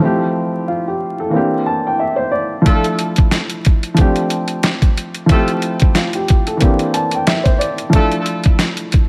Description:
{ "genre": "hip hop, boom-bap hip-hop", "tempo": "91 BPM", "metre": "4/4", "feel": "swing 55% on 16ths", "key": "D minor", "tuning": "A4 = 436 Hz", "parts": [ { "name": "dark upright piano", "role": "accompaniment", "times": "0.0-9.1 s", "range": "E3 to A5", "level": "-19 LUFS", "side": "equal", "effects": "cassette tape, high-pass filter, low-pass filter" }, { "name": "mellow horn section", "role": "stabs", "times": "2.7-8.1 s", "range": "A3 to A4", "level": "-25 LUFS", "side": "equal", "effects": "high-pass filter, low-pass filter, digital delay" }, { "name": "boom bap sampler-style drum kit", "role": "drums", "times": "2.7-9.1 s", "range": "hi-hat, kick drum, snare drum", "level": "-16 LUFS", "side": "equal", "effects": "none" } ], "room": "light reverb, studio ambience", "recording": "vinyl crackle", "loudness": "-16 LUFS", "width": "mono", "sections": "0.0-9.1 A section", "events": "break 0.0-2.7", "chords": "0.0 Fmaj7; 1.3 C7; 2.7 Dmadd9; 4.0 G7sus4; 5.3 Fmaj7; 6.6 C7; 7.9 Dmadd9" }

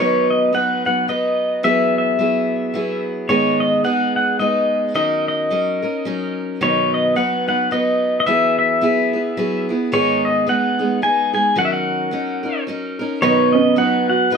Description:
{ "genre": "acoustic folk duo or small band", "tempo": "109 BPM", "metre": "3/4", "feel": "swing 58% on 8ths", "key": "B major", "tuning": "A4 = 440 Hz", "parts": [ { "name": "pedal steel guitar", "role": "melody", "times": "0.0-14.4 s", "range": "C#5 to G#5", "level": "-18 LUFS", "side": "left 2 dB", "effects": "none" }, { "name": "picked steel-string acoustic guitar", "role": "accompaniment", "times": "0.0-14.4 s", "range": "G#2 to B4", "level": "-20 LUFS", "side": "right 2 dB", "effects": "none" }, { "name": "felt-muted upright piano", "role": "arpeggios", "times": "13.2-14.4 s", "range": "C#4 to F#4", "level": "-21 LUFS", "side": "right 12 dB", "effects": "none" } ], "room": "little or no reverb", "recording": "close, detailed microphones", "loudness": "-16 LUFS", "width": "side -6 dB against mid", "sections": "0.0-13.2 A section; 13.2-14.4 A section", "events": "none", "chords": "0.0 B; 1.6 Eadd9; 3.3 G#m; 5.0 D#m7; 6.6 B; 8.3 Eadd9; 9.9 G#m; 11.6 D#m7; 13.2 B" }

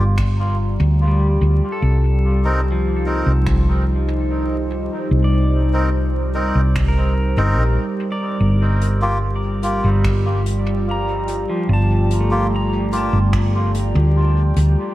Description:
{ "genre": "ambient dub", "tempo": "73 BPM", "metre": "4/4", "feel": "straight", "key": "G minor", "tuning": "A4 = 441 Hz", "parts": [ { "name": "deep dark ambient pad", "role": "sustained chords", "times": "0.0-14.9 s", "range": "G3 to G5", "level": "-24 LUFS", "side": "left 1 dB", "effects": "chorus, built-in reverb" }, { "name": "melodica", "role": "stabs", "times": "0.0-13.2 s", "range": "Bb3 to Bb4", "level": "-26 LUFS", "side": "equal", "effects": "dub echo" }, { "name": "hollow-body short-scale fingered electric bass", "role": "bass", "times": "0.0-14.7 s", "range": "G1 to D2", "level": "-17 LUFS", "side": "equal", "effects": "none" }, { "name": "electronic kick drum", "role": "drums", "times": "0.2-13.5 s", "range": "none", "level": "-25 LUFS", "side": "equal", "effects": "none" }, { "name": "jazz brush drum kit", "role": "drums", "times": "0.2-14.7 s", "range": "finger snaps, hi-hat", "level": "-34 LUFS", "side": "equal", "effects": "dub echo" }, { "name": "pedal steel guitar", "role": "arpeggios", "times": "1.1-14.9 s", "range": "F3 to Bb5", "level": "-26 LUFS", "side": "right 1 dB", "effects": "vintage 12-bit sampler grit, dub echo" } ], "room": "moderate concert hall reverb, RT60 2.1 s", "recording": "vinyl crackle", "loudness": "-16 LUFS", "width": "side -15 dB against mid", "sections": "0.0-14.9 A section", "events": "none", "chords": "0.0 G7(no3); 1.8 Cm7; 8.4 Gm7" }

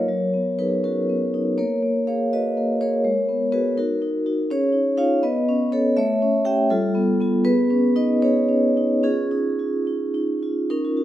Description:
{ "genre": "classical, contemporary piece for solo vibraphone", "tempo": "71-84 BPM (dotted quarters)", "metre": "6/8", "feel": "rubato", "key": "unclear", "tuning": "A4 = 439 Hz", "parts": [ { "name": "vibraphone with soft mallets", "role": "solo", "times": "0.0-11.0 s", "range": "F#3 to G5", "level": "-19 LUFS", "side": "equal", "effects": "none" } ], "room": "wet concert hall reverb, RT60 1.9 s", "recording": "none", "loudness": "-19 LUFS", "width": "side -13 dB against mid", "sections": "0.0-10.7 A section", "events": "none", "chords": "0.1 Bmaj7/F#; 1.6 A#m7; 3.0 G#m11; 3.8 D#m; 4.5 Dbadd9; 5.2 B9; 6.0 A7; 6.7 G9; 7.4 B69; 9.0 Dbadd9" }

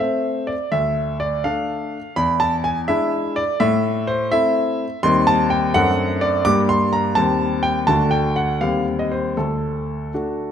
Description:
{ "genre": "classical-period piano sonatina", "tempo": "83 BPM (dotted quarters)", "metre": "6/8", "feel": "rubato", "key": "A minor", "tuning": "A4 = 443 Hz", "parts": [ { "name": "clear grand piano", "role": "solo", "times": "0.0-10.5 s", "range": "D2 to D6", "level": "-17 LUFS", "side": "equal", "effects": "none" } ], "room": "moderate recital hall reverb, RT60 1.8 s", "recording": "none", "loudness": "-17 LUFS", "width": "side -8 dB against mid", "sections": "0.0-10.5 A section", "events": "none", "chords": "0.0 Am; 0.7 Dm; 2.2 E7; 3.6 Am; 5.0 Cm/Eb; 5.7 D7/F#; 6.5 Gm; 7.2 Cm/Eb; 7.9 D; 8.6 Cm/Eb; 9.4 D" }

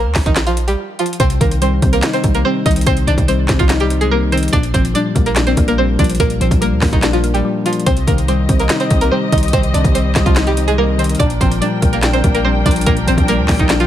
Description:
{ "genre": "hip hop, trap", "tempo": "144 BPM", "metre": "4/4", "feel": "half-time", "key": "C minor", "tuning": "A4 = 442 Hz", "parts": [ { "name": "string-like resonator pluck", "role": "melody", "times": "0.0-13.9 s", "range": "Eb3 to Eb5", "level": "-18 LUFS", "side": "right 1 dB", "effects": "chorus, phaser, low-pass filter, tape echo" }, { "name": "warm 808-style bass", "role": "bass", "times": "0.0-13.9 s", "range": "Ab1 to D2", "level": "-18 LUFS", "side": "equal", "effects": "none" }, { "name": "trap drum kit", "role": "drums", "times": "0.1-13.9 s", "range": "handclaps, hi-hat, kick drum, snare drum", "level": "-16 LUFS", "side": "equal", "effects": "none" }, { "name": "soft electric-piano-like synth keys", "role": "accompaniment", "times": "1.2-13.9 s", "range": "Bb2 to Eb4", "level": "-18 LUFS", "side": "left 3 dB", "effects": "chorus, low-pass filter" }, { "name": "muted studio string section", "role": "sustained chords", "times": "7.9-13.9 s", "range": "C4 to G5", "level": "-23 LUFS", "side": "left 1 dB", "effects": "none" } ], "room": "little or no reverb", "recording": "none", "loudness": "-12 LUFS", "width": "side -11 dB against mid", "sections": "0.0-13.9 A section", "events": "break 0.0-1.2", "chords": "0.0 Bb5; 1.2 Cm; 4.5 Bb6; 7.9 Cm; 11.2 Bb6" }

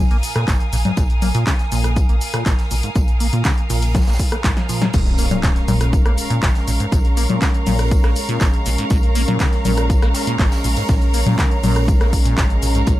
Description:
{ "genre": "acid house", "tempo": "121 BPM", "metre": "4/4", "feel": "straight", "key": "Bb minor", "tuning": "A4 = 440 Hz", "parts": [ { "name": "liquid acid bass", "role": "riff", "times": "0.0-12.9 s", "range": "Ab2 to Bb3", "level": "-23 LUFS", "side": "equal", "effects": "phaser, tube saturation, sidechain pumping, digital delay" }, { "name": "warm sub bass", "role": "bass", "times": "0.0-13.0 s", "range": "Ab1 to Bb2", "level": "-20 LUFS", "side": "equal", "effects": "sidechain pumping" }, { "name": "bright symphonic string section", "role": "texture", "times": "0.0-13.0 s", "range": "Bb4 to Eb6", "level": "-28 LUFS", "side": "right 2 dB", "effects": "sidechain pumping" }, { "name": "punchy analog drum machine", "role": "drums", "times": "0.1-13.0 s", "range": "congas, crash cymbal, handclaps, hi-hat, rim click, shaker, snare drum", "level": "-23 LUFS", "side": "left 2 dB", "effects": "none" }, { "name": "crisp fusion drum kit", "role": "drums", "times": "0.2-13.0 s", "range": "hi-hat, snare drum, tambourine", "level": "-35 LUFS", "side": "right 2 dB", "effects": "high-pass filter on hats, high-pass filter on snare, high-pass filter on perc, high-pass filter on room" }, { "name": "electronic kick drum", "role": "drums", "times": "0.5-13.0 s", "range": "none", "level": "-17 LUFS", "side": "equal", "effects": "overdrive" }, { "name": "warm analog pad", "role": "sustained chords", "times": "4.9-13.0 s", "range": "Ab3 to Db5", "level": "-26 LUFS", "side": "right 1 dB", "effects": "wide subtle chorus, sidechain pumping" }, { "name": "impact", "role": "sound effects", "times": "4.9-6.9 s", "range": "none", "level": "-27 LUFS", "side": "equal", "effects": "none" } ], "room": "little or no reverb", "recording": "none", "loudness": "-15 LUFS", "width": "side -15 dB against mid", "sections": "0.0-4.9 A section; 4.9-13.0 B section", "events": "drum fill 4.4-4.9; drop 4.9-13.0; impact 4.9-6.9", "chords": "0.0 Bb7(no3); 4.9 Bbm7" }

